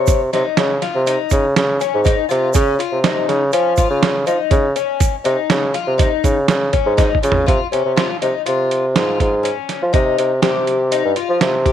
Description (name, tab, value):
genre	progressive instrumental, band music in an uneven meter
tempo	122 BPM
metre	5/4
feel	straight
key	unclear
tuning	A4 = 439 Hz
part	fingerpicked twelve-string acoustic guitar	arpeggios	0.0-11.7 s	Db4 to Db5	-21 LUFS	left 11 dB	none
part	mellow bassoon	bass	0.0-11.7 s	G2 to F3	-17 LUFS	right 1 dB	none
part	boom bap sampler-style drum kit	drums	0.1-11.7 s	hi-hat, kick drum, snare drum, toms	-18 LUFS	right 3 dB	none
part	tube shaker	percussion	0.1-7.4 s	none	-31 LUFS	right 15 dB	none
room	small room ambience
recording	1960s-style stereo with parts hard left and right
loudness	-14 LUFS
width	side -10 dB against mid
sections	0.0-7.5 A section; 7.5-11.7 B section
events	drum fill 7.0-7.5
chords	0.0 Dbadd9; 9.9 Cm